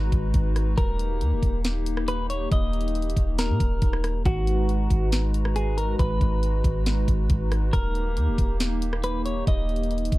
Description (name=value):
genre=hip hop, atmospheric cloud-rap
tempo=138 BPM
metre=4/4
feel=half-time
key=G# minor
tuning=A4 = 441 Hz
part: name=hollow soft pad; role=sustained chords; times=0.0-10.2 s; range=G#3 to A#5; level=-31 LUFS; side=left 1 dB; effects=chorus
part: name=soft 808-style bass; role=bass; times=0.0-10.2 s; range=D#1 to A#2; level=-25 LUFS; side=equal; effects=none
part: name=trap drum kit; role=drums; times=0.1-10.2 s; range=hi-hat, kick drum, rim click, snare drum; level=-25 LUFS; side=equal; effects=none
part: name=clean electric guitar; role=melody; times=0.8-10.2 s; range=F#4 to D#5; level=-32 LUFS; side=equal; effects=low-pass filter, digital delay
room=little or no reverb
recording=dark, warm production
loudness=-22 LUFS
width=side -18 dB against mid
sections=0.0-10.2 A section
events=none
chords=0.0 G#m7; 0.8 D#; 4.3 G#m7; 7.7 D#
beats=0.34 | 0.78 1.21 1.65 2.08 | 2.52 2.95 3.38 3.82 | 4.25 4.69 5.12 5.56 | 5.99 6.43 6.86 7.30 | 7.73 8.17 8.60 9.04 | 9.47 9.91